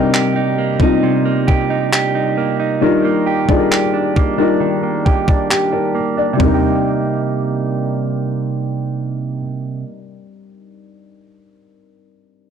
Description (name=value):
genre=contemporary R&B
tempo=67 BPM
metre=4/4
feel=straight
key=C minor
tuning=A4 = 440 Hz
part: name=felt-muted upright piano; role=accompaniment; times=0.0-12.5 s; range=G3 to D5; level=-18 LUFS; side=left 5 dB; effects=low-pass filter
part: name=direct-recorded clean electric guitar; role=arpeggios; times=0.0-10.0 s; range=C3 to G4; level=-18 LUFS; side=right 6 dB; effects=low-pass filter, ping-pong delay
part: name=crisp 8-bit digital drum machine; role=drums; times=0.1-6.6 s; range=handclaps, kick drum, toms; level=-16 LUFS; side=right 1 dB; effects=soft clipping on snare
room=light reverb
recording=blown-out, overdriven recording, overdrive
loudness=-14 LUFS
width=side -7 dB against mid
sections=0.0-6.4 A section; 6.4-10.0 B section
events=filter sweep 0.0-6.4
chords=0.0 Cm7; 2.8 Ebmaj7; 6.4 Cm7